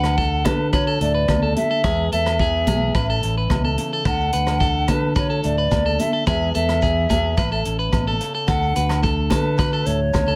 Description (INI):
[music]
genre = highlife guitar band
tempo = 108 BPM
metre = 4/4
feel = straight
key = D major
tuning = A4 = 441 Hz
[part]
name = hollow concert flute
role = melody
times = 0.0-10.4 s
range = B4 to F#5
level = -25 LUFS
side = equal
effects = none
[part]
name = nylon-string guitar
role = accompaniment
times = 0.0-10.4 s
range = E2 to G#4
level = -31 LUFS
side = equal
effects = none
[part]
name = electric guitar at the edge of break-up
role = arpeggios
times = 0.0-10.4 s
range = G#4 to B4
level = -28 LUFS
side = equal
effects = slapback echo, plate reverb
[part]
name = fingered electric bass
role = bass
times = 0.0-10.4 s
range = A1 to D3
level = -25 LUFS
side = equal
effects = none
[part]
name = vintage drum kit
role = drums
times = 0.0-10.3 s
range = hi-hat, kick drum, rim click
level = -27 LUFS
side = equal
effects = none
[part]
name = agogo bells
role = percussion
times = 0.1-10.3 s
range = none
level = -35 LUFS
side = equal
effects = none
[part]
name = congas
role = percussion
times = 0.5-10.3 s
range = none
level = -30 LUFS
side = equal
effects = none
[part]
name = shekere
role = percussion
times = 4.1-10.3 s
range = none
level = -32 LUFS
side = equal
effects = none
[sound]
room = light reverb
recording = none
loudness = -20 LUFS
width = mono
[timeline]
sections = 0.0-10.4 A section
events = none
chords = 0.0 D; 1.8 E; 3.0 A; 4.1 D; 6.3 E; 7.4 A; 8.5 D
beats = 0.18 0.74 1.29 | 1.85 2.40 2.95 3.51 | 4.06 4.61 5.17 5.72 | 6.27 6.83 7.38 7.93 | 8.48 9.04 9.59 10.14